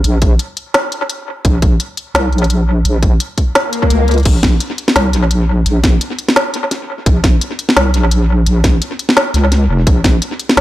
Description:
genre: half-time drum and bass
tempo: 171 BPM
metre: 4/4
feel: swing 56% on 16ths, half-time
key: Bb minor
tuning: A4 = 440 Hz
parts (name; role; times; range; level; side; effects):
- deep soft wobble bass; bass; 0.0-10.6 s; F1 to Db2; -12 LUFS; equal; chorus
- organic electronic drum kit; drums; 0.0-10.6 s; crash cymbal, hi-hat, snare drum; -15 LUFS; equal; overdrive, studio reverb, dub echo
- electronic kick drum; drums; 0.2-10.1 s; none; -12 LUFS; equal; studio reverb
- swell; sound effects; 3.7-4.3 s; none; -19 LUFS; left 5 dB; none
room: light reverb, digital ambience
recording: echo-heavy mix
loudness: -11 LUFS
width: side -15 dB against mid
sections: 0.0-10.6 A section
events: swell 3.7-4.3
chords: none

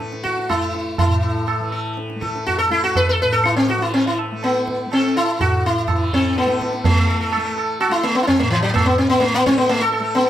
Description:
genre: indian classical, Hindustani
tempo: 124 BPM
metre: 3/4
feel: straight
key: A raga shivaranjani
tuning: A4 = 440 Hz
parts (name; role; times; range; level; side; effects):
- tanpura; drone; 0.0-10.3 s; A2 to A3; -26 LUFS; left 1 dB; none
- tabla; percussion; 0.0-10.3 s; none; -23 LUFS; right 2 dB; none
- sitar; melody; 0.2-10.3 s; E3 to B4; -18 LUFS; equal; none
room: moderate large studio reverb, RT60 0.9 s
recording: band playing live in one room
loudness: -16 LUFS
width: side -11 dB against mid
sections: 0.0-6.8 A section; 6.8-10.3 B section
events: speeding up 0.0-10.3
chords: none

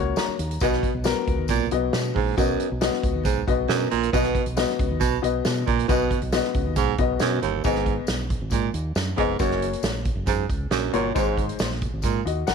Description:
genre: uptempo 1960s-style soul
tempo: 137 BPM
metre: 4/4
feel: straight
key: unclear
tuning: A4 = 441 Hz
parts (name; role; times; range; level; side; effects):
- warm upright piano; accompaniment; 0.0-12.5 s; G#3 to A#5; -26 LUFS; left 12 dB; none
- fingered electric bass; bass; 0.0-12.5 s; E#1 to B2; -28 LUFS; right 1 dB; none
- natural country drum kit; drums; 0.2-12.5 s; hi-hat, kick drum, snare drum; -26 LUFS; right 1 dB; none
- tambourine; percussion; 0.2-12.5 s; none; -40 LUFS; left 12 dB; none
- clear baritone saxophone; riff; 0.6-12.2 s; D#2 to B2; -26 LUFS; right 14 dB; none
room: light reverb, small room reverb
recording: 1960s-style stereo with parts hard left and right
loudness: -21 LUFS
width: side -6 dB against mid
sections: 0.0-7.6 A section; 7.6-12.5 B section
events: upright piano fill 0.0-0.6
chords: 0.0 F#; 0.6 B; 7.6 G#m; 9.4 F#; 11.2 G#

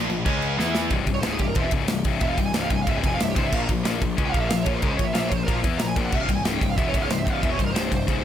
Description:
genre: heavy metal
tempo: 184 BPM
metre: 4/4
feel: straight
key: C phrygian dominant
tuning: A4 = 440 Hz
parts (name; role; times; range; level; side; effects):
- heavy high-gain guitar; riff; 0.0-8.2 s; C2 to E4; -26 LUFS; left 9 dB; distortion
- heavy high-gain guitar; riff; 0.0-0.9 s; Bb2 to E4; -29 LUFS; right 19 dB; distortion
- high-gain distorted guitar; riff; 0.0-0.9 s; Bb2 to E4; -32 LUFS; right 3 dB; distortion
- fuzz picked electric bass; bass; 0.0-8.2 s; C1 to E2; -28 LUFS; right 1 dB; overdrive
- modern studio drum kit; drums; 0.1-8.2 s; crash cymbal, kick drum, ride cymbal, snare drum; -25 LUFS; right 1 dB; none
- smooth overdriven lead guitar; melody; 1.1-8.2 s; F4 to Bb5; -28 LUFS; right 4 dB; digital delay
room: little or no reverb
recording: none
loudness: -21 LUFS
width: side -10 dB against mid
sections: 0.9-8.2 A section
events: drum fill 0.6-0.9; lead electric guitar solo 0.9-8.2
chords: 0.3 Db5; 0.6 E5; 0.9 C; 3.5 Bb5; 6.1 C

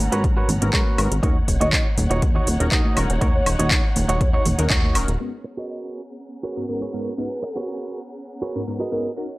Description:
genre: filtered disco house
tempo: 121 BPM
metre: 4/4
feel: straight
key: G# minor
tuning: A4 = 440 Hz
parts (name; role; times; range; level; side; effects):
- warm symphonic string section; sustained chords; 0.0-9.4 s; B3 to A#5; -33 LUFS; equal; sidechain pumping, low-pass filter
- plucky analog bass; bass; 0.0-5.2 s; D#1 to G#2; -22 LUFS; equal; sidechain pumping, low-pass filter
- direct-recorded clean electric guitar; riff; 0.1-9.1 s; D#4 to D#5; -27 LUFS; right 3 dB; vintage 12-bit sampler grit, sidechain pumping, low-pass filter
- house drum kit; drums; 0.1-5.2 s; handclaps, hi-hat, woodblock; -24 LUFS; equal; overdrive, sidechain pumping on hats, sidechain pumping on perc
- tambourine and congas; percussion; 0.1-5.2 s; none; -30 LUFS; right 1 dB; sidechain pumping on perc, low-pass filter on perc
- electronic kick drum; drums; 0.2-4.8 s; none; -21 LUFS; equal; none
- funky polysynth comp; accompaniment; 0.6-9.3 s; G#2 to A#4; -28 LUFS; equal; chorus, phaser, sidechain pumping, low-pass filter
- mellow hollow concert flute; melody; 1.6-7.7 s; B4 to D#5; -28 LUFS; equal; vintage 12-bit sampler grit, sidechain pumping, low-pass filter
room: little or no reverb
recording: dry, gritty hardware recording, transformer saturation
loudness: -18 LUFS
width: side -20 dB against mid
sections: 0.0-5.2 A section; 5.2-9.4 B section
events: band accent 4.7; filter sweep 5.2-9.4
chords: 0.0 G#m11; 1.2 D#m7; 5.2 G#m11

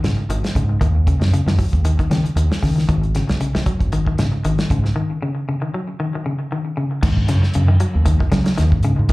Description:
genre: afrobeat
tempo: 116 BPM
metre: 4/4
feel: swing 55% on 16ths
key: unclear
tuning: A4 = 440 Hz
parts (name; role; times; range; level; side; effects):
- semi-hollow electric guitar; arpeggios; 0.0-9.1 s; C#3 to F#3; -22 LUFS; left 2 dB; tape echo
- deep dub fingered electric bass; bass; 0.0-9.1 s; G#1 to F#3; -17 LUFS; equal; none
- warm soul drum kit; drums; 0.0-9.1 s; crash cymbal, hi-hat, kick drum, snare drum; -21 LUFS; equal; none
room: light reverb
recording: live gig heard through the venue's PA, club reverb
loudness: -16 LUFS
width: side -20 dB against mid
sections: 0.0-7.0 A section; 7.0-9.1 B section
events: break 5.0-7.0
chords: 0.0 G#5; 0.8 D#m7; 2.9 G#5; 5.0 D#7(no3); 7.0 G#5

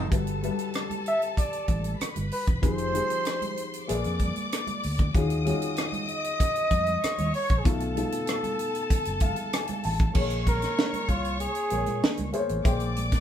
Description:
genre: lush 1970s-style soul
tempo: 96 BPM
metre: 4/4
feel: straight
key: unclear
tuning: A4 = 440 Hz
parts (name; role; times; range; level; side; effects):
- clear studio string section; second line; 0.0-13.2 s; A4 to Eb6; -34 LUFS; left 3 dB; none
- dark baby grand piano; accompaniment; 0.0-13.2 s; B2 to A5; -32 LUFS; left 3 dB; none
- fingered electric bass; bass; 0.0-13.1 s; E1 to Bb2; -30 LUFS; equal; none
- tight funk drum kit; drums; 0.1-13.2 s; crash cymbal, hi-hat, kick drum, rim click, snare drum; -27 LUFS; equal; none
- congas; percussion; 0.1-13.2 s; none; -39 LUFS; right 4 dB; none
- breathy flugelhorn; melody; 1.1-12.3 s; F4 to E5; -29 LUFS; equal; none
room: moderate studio reverb, RT60 0.6 s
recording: band playing live in one room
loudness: -24 LUFS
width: side -10 dB against mid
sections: 0.1-10.2 A section; 10.2-13.2 B section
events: grand piano fill 8.9-10.2; flugelhorn solo 10.2-13.2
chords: 0.1 Gmaj9; 2.6 Fm9; 3.9 Bb7b9; 5.1 Ebm11; 7.7 B7#11; 10.2 Bbm9; 12.7 Bb13

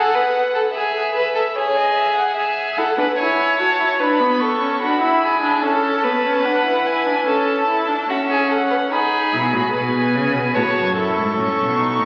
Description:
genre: classical, baroque-style fugue for string quartet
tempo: 73 BPM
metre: 4/4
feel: straight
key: A major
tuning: A4 = 442 Hz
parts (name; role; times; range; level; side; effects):
- warm violin; melody; 0.0-12.1 s; C#5 to C#6; -24 LUFS; equal; none
- rich violin; second line; 0.0-12.1 s; F#4 to C#5; -22 LUFS; equal; none
- warm viola; accompaniment; 2.8-12.1 s; B3 to G#4; -24 LUFS; equal; none
- rich cello; bass; 9.3-12.1 s; F#2 to C#3; -24 LUFS; equal; none
room: wet concert hall reverb, RT60 2.0 s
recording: very old 78 rpm record, vinyl crackle, nothing above 7.5 kHz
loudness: -18 LUFS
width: mono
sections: 0.0-12.1 A section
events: none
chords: 0.0 N.C.; 0.7 E/G#; 2.4 A; 4.0 D; 7.3 A/C#; 8.9 E; 10.6 A

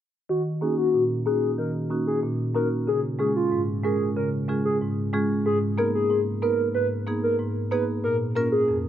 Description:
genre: dancehall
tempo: 93 BPM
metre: 4/4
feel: straight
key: Eb minor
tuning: A4 = 440 Hz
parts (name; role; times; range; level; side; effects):
- hollow clarinet-like synth lead; melody; 0.3-8.8 s; F4 to Cb5; -25 LUFS; left 1 dB; chorus, phaser, low-pass filter
- marimba with medium hard mallets; accompaniment; 0.3-8.9 s; F2 to Cb5; -25 LUFS; right 1 dB; low-pass filter
room: light reverb, small room ambience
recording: none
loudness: -22 LUFS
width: side -10 dB against mid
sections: 0.3-8.9 A section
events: filter sweep 0.3-8.9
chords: 0.3 Ebm7; 2.9 Db; 5.5 Abmadd9; 8.0 Bbm

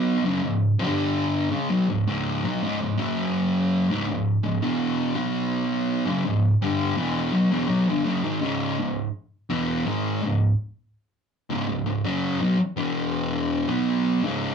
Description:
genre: metal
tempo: 83 BPM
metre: 4/4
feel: straight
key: C# phrygian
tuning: A4 = 440 Hz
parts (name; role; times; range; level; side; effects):
- fuzz guitar; solo; 0.0-14.5 s; C#2 to B3; -22 LUFS; equal; distortion
room: wet small room reverb, RT60 0.5 s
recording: band playing live in one room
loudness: -22 LUFS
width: side -6 dB against mid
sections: 0.0-8.4 A section; 8.4-14.5 B section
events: none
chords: 0.3 C#5; 0.8 G5; 1.5 C#5; 3.0 F#5; 3.9 C#m; 5.2 B5; 6.1 C#m; 12.8 E5; 13.7 C#5

